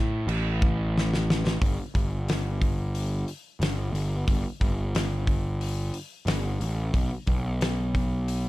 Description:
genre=rock, shoegaze and dream pop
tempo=90 BPM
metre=4/4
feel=straight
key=G major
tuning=A4 = 440 Hz
part: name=fuzz picked electric bass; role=bass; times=0.0-8.5 s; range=G1 to A2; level=-27 LUFS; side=equal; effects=overdrive
part: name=loose indie drum kit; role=drums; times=0.3-8.4 s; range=crash cymbal, hi-hat, kick drum, snare drum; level=-27 LUFS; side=equal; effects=none
room=little or no reverb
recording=dark, warm production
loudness=-24 LUFS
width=side -18 dB against mid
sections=0.0-1.6 A section; 1.6-8.5 B section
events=drum fill 0.9-1.6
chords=none

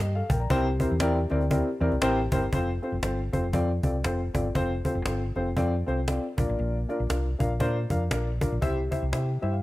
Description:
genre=uptempo 1960s-style soul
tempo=118 BPM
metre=4/4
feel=swing 59% on 8ths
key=F major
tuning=A4 = 439 Hz
part: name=dark upright piano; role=accompaniment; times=0.0-9.6 s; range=Bb2 to Bb5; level=-28 LUFS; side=left 1 dB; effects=none
part: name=hollow-body short-scale fingered electric bass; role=bass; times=0.0-9.6 s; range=F1 to C3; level=-28 LUFS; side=equal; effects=none
part: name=cajon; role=drums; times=0.3-9.6 s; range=none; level=-30 LUFS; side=equal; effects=none
room=small room ambience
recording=none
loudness=-24 LUFS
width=side -17 dB against mid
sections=0.0-2.5 A section; 2.5-9.6 B section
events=upright piano fill 9.1-9.6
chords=0.0 Eb; 0.5 C7; 2.5 F; 6.3 Bb; 8.6 C

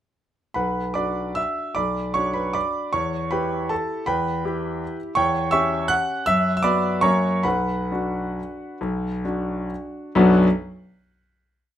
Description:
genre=classical, piano waltz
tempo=127-176 BPM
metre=3/4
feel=rubato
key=B minor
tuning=A4 = 440 Hz
part: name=clear concert grand piano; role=solo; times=0.5-10.5 s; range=B1 to F#6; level=-20 LUFS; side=equal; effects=none
room=light reverb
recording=close, detailed microphones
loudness=-20 LUFS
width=side -11 dB against mid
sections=0.6-10.2 A section; 10.2-11.5 final chord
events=slowing down 6.8-10.2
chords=0.6 Bm; 2.9 Em; 5.2 C#dim/E; 6.3 Bm/F#; 7.0 F#; 7.5 Bm

